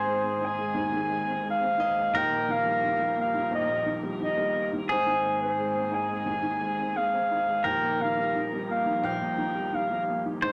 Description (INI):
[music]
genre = acoustic folk-pop ballad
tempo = 87 BPM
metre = 4/4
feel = straight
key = unclear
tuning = A4 = 440 Hz
[part]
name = mellow clarinet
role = melody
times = 0.0-10.5 s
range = C5 to Ab5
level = -30 LUFS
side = equal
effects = none
[part]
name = pedal steel guitar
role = second line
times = 0.0-10.5 s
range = Ab4 to C5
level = -33 LUFS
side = equal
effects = none
[part]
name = warm baby grand piano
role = accompaniment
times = 0.0-10.5 s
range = Eb1 to Eb4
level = -34 LUFS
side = equal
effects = none
[part]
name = muted studio string section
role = sustained chords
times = 0.0-10.5 s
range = Eb3 to Bb4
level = -41 LUFS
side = equal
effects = none
[part]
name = picked old ladder-braced acoustic guitar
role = arpeggios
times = 0.0-2.5, 9.0-10.5 s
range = C5 to F5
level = -39 LUFS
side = equal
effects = none
[sound]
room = moderate studio reverb, RT60 0.6 s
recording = none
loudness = -27 LUFS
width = mono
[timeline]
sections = 0.0-10.5 A section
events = none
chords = 0.0 Abadd9; 2.1 Ebadd9; 4.9 Abadd9; 7.6 Ebadd9